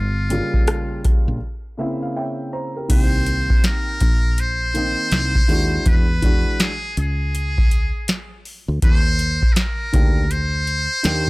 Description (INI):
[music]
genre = hip hop, jazz-hop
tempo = 81 BPM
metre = 4/4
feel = swing 63% on 16ths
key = unclear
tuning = A4 = 441 Hz
[part]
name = trumpet with metal mute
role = melody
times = 0.0-11.3 s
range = F4 to C5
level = -24 LUFS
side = equal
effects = none
[part]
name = woody fretless electric bass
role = bass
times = 0.0-11.3 s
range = G1 to E2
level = -22 LUFS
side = equal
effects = none
[part]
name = dark grand piano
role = accompaniment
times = 0.3-11.3 s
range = Db3 to Bb5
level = -25 LUFS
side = equal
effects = none
[part]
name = booming analog drum machine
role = drums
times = 0.3-11.3 s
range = crash cymbal, hi-hat, kick drum, rim click, snare drum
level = -18 LUFS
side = equal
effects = none
[sound]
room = little or no reverb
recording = dry, gritty hardware recording, transformer saturation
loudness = -17 LUFS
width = side -23 dB against mid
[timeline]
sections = 0.0-2.9 A section; 2.9-11.3 B section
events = break 1.4-2.9; grand piano fill 1.4-2.9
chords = 0.0 Gm7b5; 1.4 C7b9; 2.9 Cm7; 5.9 E9; 8.8 Ebmaj7